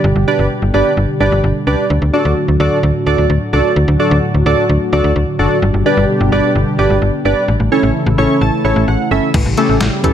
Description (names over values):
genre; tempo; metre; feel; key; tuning
synth-pop; 129 BPM; 4/4; straight; D major; A4 = 437 Hz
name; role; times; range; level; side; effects
warm analog pad; sustained chords; 0.0-10.1 s; A2 to A4; -18 LUFS; equal; chorus
slap-like FM bass; bass; 0.0-10.1 s; F#1 to D2; -15 LUFS; equal; none
warm analog keys; accompaniment; 0.3-10.1 s; C#4 to C#6; -15 LUFS; right 1 dB; chorus
wide unison pluck; arpeggios; 9.3-10.1 s; E3 to A3; -20 LUFS; left 10 dB; digital delay
detuned 8-bit digital drum machine; drums; 9.3-10.1 s; crash cymbal, hi-hat, kick drum, snare drum; -17 LUFS; left 1 dB; overdrive
room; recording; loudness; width
moderate recital hall reverb, RT60 1.4 s; none; -11 LUFS; side -9 dB against mid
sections
0.0-9.3 A section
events
synth keys fill 7.9-9.3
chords
0.0 G; 1.9 D; 5.6 G; 7.5 A; 9.3 A7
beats
| 0.04 0.51 0.97 1.44 | 1.90 2.37 2.83 3.30 | 3.76 4.23 4.69 5.16 | 5.62 6.09 6.55 7.02 | 7.48 7.95 8.41 8.88 | 9.34 9.81